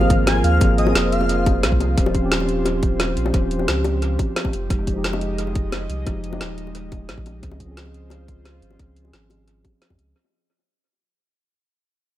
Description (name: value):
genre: liquid drum and bass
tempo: 176 BPM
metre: 4/4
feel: straight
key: unclear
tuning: A4 = 439 Hz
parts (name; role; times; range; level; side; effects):
- airy dreamy lead; melody; 0.0-1.5 s; Eb5 to Ab5; -25 LUFS; equal; chorus, tape echo
- mellow tine electric piano; accompaniment; 0.0-10.2 s; F3 to Ab4; -25 LUFS; right 1 dB; analog delay
- airy breathy pad; sustained chords; 0.0-10.1 s; Ab3 to Eb5; -29 LUFS; left 1 dB; chorus, sidechain pumping
- warm sub bass; bass; 0.0-10.1 s; Eb1 to F2; -24 LUFS; equal; none
- bongos; percussion; 0.0-10.0 s; none; -30 LUFS; left 4 dB; none
- impact; sound effects; 0.0-0.6 s; none; barely audible; none; none
- drum and bass drum kit; drums; 0.1-10.1 s; hi-hat, snare drum; -25 LUFS; equal; analog delay
- electronic kick drum; drums; 0.1-10.0 s; none; -21 LUFS; equal; none
room: light reverb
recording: echo-heavy mix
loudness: -18 LUFS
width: side -13 dB against mid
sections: 0.0-10.2 A section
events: fade-out 0.0-10.2; impact 0.0-0.6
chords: 0.0 Ab69; 2.0 Eb13; 4.5 Fm9; 7.4 Dbmaj7